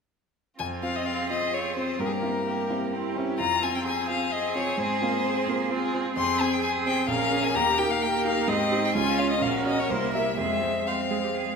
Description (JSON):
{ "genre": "quick classical-period movement for piano quintet", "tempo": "129 BPM", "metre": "3/4", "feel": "straight", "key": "F minor", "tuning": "A4 = 441 Hz", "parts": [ { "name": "clear violin", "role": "melody", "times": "0.6-11.6 s", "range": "Ab4 to C6", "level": "-28 LUFS", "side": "left 5 dB", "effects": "none" }, { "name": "rich violin", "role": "second line", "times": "0.6-11.6 s", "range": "C4 to Ab4", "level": "-32 LUFS", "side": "left 1 dB", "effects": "none" }, { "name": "rich viola", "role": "accompaniment", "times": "0.6-11.6 s", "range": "Ab3 to Db4", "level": "-32 LUFS", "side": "right 3 dB", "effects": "none" }, { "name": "warm grand piano", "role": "accompaniment", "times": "0.6-11.6 s", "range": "Bb1 to E5", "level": "-30 LUFS", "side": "right 1 dB", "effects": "none" }, { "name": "clear cello", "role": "second line", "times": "1.1-11.6 s", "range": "E4 to C5", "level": "-32 LUFS", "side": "right 7 dB", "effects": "none" } ], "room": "wet scoring stage reverb, RT60 1.8 s", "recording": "minimal, uncompressed stereo recording", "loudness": "-23 LUFS", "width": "side -5 dB against mid", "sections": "0.6-11.6 A section", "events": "none", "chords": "0.6 Fm; 2.0 C7/G; 3.4 Fm; 4.8 Fm/Ab; 6.2 Fm; 7.1 Bbm7; 7.6 Eb; 8.5 Abmaj7; 9.0 Db; 9.4 Gb/Bb; 9.9 C7; 10.4 Fm" }